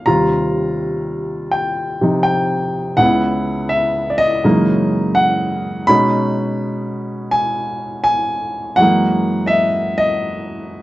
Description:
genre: solo jazz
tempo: 82 BPM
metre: 4/4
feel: swing 67% on 8ths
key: unclear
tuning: A4 = 440 Hz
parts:
  - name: warm grand piano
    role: solo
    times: 0.0-10.8 s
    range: Db2 to B5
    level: -15 LUFS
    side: equal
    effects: none
room: light reverb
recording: nothing above 7.6 kHz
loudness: -15 LUFS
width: side -16 dB against mid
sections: 0.1-10.8 A section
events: none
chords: 0.1 Eb69; 3.0 Dbm7; 4.4 Gb13; 5.9 B69; 8.8 Gb9

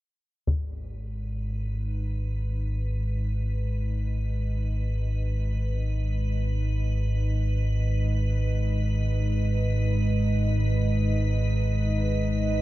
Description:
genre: dark ambient drone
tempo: free time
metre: none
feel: none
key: G# minor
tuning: A4 = 442 Hz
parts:
  - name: dark analog pad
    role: sustained chords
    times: 0.5-12.6 s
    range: G#3 to D#5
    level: -35 LUFS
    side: equal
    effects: chorus
  - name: deep rumbling drone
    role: drone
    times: 0.7-12.6 s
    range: G#1 to G#2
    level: -25 LUFS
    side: equal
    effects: built-in reverb, lush chorus
  - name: solo taiko drums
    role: percussion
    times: 0.5-0.7 s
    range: none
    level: -26 LUFS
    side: left 1 dB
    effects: low-pass filter on perc
  - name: icy glass pad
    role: texture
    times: 1.6-12.6 s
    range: B4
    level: -38 LUFS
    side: right 1 dB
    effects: chorus, built-in reverb
room: light reverb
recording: nothing above 10.4 kHz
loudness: -24 LUFS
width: side -16 dB against mid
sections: 0.5-12.6 A section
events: fade-in on analog synth pad 0.5-12.6; fade-in on ambient pad 0.5-12.6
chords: 0.5 G#5

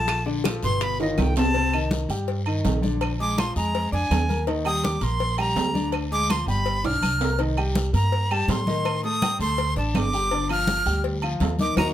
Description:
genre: Afro-Cuban jazz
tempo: 164 BPM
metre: 4/4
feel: straight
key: unclear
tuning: A4 = 441 Hz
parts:
  - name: breathy bright jazz flute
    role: melody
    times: 0.0-11.9 s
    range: D#5 to F6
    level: -26 LUFS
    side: equal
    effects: none
  - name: warm grand piano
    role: accompaniment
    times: 0.0-11.9 s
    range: Cb3 to D6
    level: -28 LUFS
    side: left 3 dB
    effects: none
  - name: upright bass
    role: bass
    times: 0.0-11.9 s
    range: G1 to A2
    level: -26 LUFS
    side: right 1 dB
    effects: none
  - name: bongos and cowbell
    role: percussion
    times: 0.1-11.9 s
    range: none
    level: -33 LUFS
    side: left 9 dB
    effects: none
  - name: claves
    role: percussion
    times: 0.1-11.9 s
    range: none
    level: -36 LUFS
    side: right 3 dB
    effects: none
  - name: congas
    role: percussion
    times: 0.1-11.9 s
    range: none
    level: -28 LUFS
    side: left 1 dB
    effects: none
  - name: guiro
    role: percussion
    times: 0.1-11.8 s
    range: none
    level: -40 LUFS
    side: left 4 dB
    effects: none
  - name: timbales and agogo bells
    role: percussion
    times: 0.1-11.9 s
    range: none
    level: -31 LUFS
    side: right 6 dB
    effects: none
room: light reverb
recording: none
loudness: -21 LUFS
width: side -12 dB against mid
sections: 0.0-1.6 A section; 1.6-11.9 A section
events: flute solo 0.0-11.9; drum fill 1.0-1.6, 6.8-7.4; band accent 11.8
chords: 0.0 Bbmaj9; 0.8 Gaug7; 1.6 Cm7; 3.0 Bb7; 4.5 Ebmaj7; 5.9 Ddim; 6.7 G7; 7.4 Cm7; 8.9 Cm69; 9.6 D5; 10.3 G5

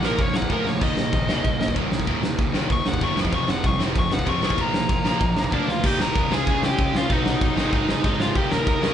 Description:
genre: punk rock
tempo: 191 BPM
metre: 4/4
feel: straight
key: unclear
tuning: A4 = 438 Hz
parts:
  - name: biting lead guitar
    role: melody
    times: 0.0-8.9 s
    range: D4 to Db6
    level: -26 LUFS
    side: left 1 dB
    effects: overdrive
  - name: cranked stack guitar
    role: riff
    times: 0.0-8.9 s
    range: Eb2 to Db4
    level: -30 LUFS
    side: right 8 dB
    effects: overdrive
  - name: distorted electric guitar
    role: riff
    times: 0.0-8.9 s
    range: Eb2 to Ab4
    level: -28 LUFS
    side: right 1 dB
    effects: overdrive
  - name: overdriven electric guitar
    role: riff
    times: 0.0-8.9 s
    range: Eb2 to Db4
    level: -31 LUFS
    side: left 9 dB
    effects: none
  - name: fuzz picked electric bass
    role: bass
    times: 0.0-8.9 s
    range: Eb1 to D2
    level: -30 LUFS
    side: equal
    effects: overdrive
  - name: big rock drum kit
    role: drums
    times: 0.0-8.9 s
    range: crash cymbal, kick drum, ride cymbal, snare drum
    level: -23 LUFS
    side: equal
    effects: none
room: light reverb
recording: band playing live in one room, nothing above 10.4 kHz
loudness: -19 LUFS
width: side -9 dB against mid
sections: 0.0-5.8 A section; 5.8-8.9 B section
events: lead electric guitar solo 0.0-5.8; drum fill 0.7, 5.7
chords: 0.0 Bb; 0.8 Eb5; 3.2 F5; 4.4 Bb; 5.8 Eb; 6.3 Db; 7.1 B; 7.6 Ab; 8.4 Eb

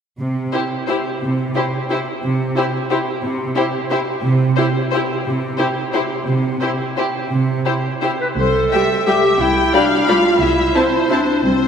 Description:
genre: classical, orchestral ballroom waltz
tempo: 161-193 BPM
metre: 3/4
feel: rubato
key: C major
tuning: A4 = 440 Hz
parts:
  - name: rich symphonic cello section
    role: bass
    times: 0.2-11.7 s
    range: C2 to C3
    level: -21 LUFS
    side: right 3 dB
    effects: none
  - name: clear studio violin section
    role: melody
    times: 0.5-11.7 s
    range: C5 to G5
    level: -22 LUFS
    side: left 4 dB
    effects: none
  - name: rich symphonic violin section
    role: second line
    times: 0.5-11.2 s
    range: G4 to B5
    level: -23 LUFS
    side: left 2 dB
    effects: none
  - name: rich symphonic viola section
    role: accompaniment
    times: 0.5-11.2 s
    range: G3 to G4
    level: -23 LUFS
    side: right 1 dB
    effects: none
  - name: clear clarinet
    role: second line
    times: 8.2-11.7 s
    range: C4 to B4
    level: -16 LUFS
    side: equal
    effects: none
room: wet church reverb, RT60 3.0 s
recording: none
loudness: -15 LUFS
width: side -7 dB against mid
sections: 0.2-8.4 A section; 8.4-11.7 B section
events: none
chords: 0.2 C; 10.4 Am/C (rootless)

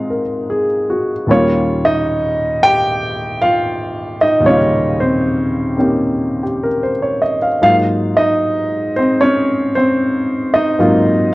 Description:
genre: solo jazz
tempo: 76 BPM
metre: 4/4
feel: swing 68% on 8ths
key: Eb mixolydian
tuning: A4 = 439 Hz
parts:
  - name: warm baby grand piano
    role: solo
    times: 0.0-11.3 s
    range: Eb2 to G5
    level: -13 LUFS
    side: equal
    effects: none
room: moderate spring reverb, RT60 1.3 s, studio ambience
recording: worn, warbling old tape, cassette tape, warbly pitch drift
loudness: -13 LUFS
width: side -20 dB against mid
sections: 0.0-11.3 A section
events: none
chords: 0.0 Ab13; 1.3 Eb13; 7.6 Ab13

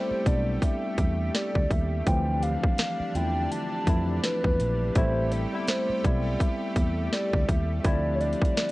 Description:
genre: contemporary R&B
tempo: 83 BPM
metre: 4/4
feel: swing 58% on 16ths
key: A minor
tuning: A4 = 441 Hz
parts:
  - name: hollow clarinet-like synth lead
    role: melody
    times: 0.0-8.7 s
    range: B4 to A5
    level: -30 LUFS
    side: equal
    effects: chorus, tape echo
  - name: barky tine electric piano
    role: accompaniment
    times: 0.0-8.7 s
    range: E3 to F4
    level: -31 LUFS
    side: left 1 dB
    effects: medium stereo tremolo
  - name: lush unison pad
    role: sustained chords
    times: 0.0-8.7 s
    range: D3 to G4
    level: -36 LUFS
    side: right 1 dB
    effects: chorus, sidechain pumping
  - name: vintage muted fingered electric bass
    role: bass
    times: 0.1-8.3 s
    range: A1 to F2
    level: -28 LUFS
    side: equal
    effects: none
  - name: trap drum kit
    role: drums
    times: 0.3-8.7 s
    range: hi-hat, kick drum, snare drum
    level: -26 LUFS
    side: equal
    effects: overdrive
room: digital ambience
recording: worn, warbling old tape, cassette tape, warbly pitch drift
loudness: -24 LUFS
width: side -19 dB against mid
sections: 0.0-8.7 A section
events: none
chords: 0.0 Am7; 2.1 Dm7; 5.0 Am7; 7.8 Dm7

